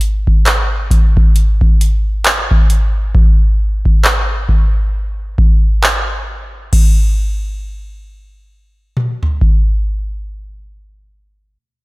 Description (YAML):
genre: R&B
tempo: 67 BPM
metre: 4/4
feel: swing 58% on 16ths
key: none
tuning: none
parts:
  - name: booming analog drum machine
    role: drums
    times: 0.0-9.7 s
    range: crash cymbal, handclaps, hi-hat, kick drum, toms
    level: -11 LUFS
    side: equal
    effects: none
room: little or no reverb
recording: none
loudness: -11 LUFS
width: side -22 dB against mid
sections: 0.0-6.7 A section; 6.7-10.3 B section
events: none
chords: none